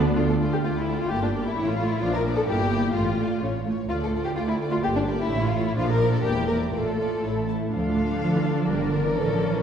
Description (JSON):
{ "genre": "quick classical-period movement for string orchestra", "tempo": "128 BPM", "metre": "2/4", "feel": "rubato", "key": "D minor", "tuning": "A4 = 440 Hz", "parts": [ { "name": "rich studio viola section", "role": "accompaniment", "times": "0.0-9.6 s", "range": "F3 to Bb4", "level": "-28 LUFS", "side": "right 1 dB", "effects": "none" }, { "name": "rich studio violin section", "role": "melody", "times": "0.2-9.6 s", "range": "A4 to A5", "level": "-38 LUFS", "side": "left 6 dB", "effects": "none" }, { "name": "rich studio violin section", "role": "second line", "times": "0.2-9.6 s", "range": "D4 to F5", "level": "-27 LUFS", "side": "left 2 dB", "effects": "none" }, { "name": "clear studio double bass section", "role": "bass", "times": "0.2-9.6 s", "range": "E1 to D3", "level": "-29 LUFS", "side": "right 2 dB", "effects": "none" }, { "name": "warm studio cello section", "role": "bass", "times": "0.2-9.5 s", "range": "D2 to A3", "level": "-28 LUFS", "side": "right 1 dB", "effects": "none" } ], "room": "wet scoring stage reverb, RT60 1.8 s", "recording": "heard from further back in the room", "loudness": "-22 LUFS", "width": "side -8 dB against mid", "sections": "0.2-7.7 A section; 7.7-9.6 A section", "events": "none", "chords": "0.2 Dm; 1.1 Gm; 1.6 A; 2.0 Bb; 2.5 Em7b5/G; 2.9 Dm/A; 3.4 A; 3.9 Dm; 4.8 Gm; 5.3 A; 5.8 Bb; 6.2 Em7b5; 6.7 Dm/A; 7.2 A5; 7.7 Dm; 8.7 Gm; 9.1 A" }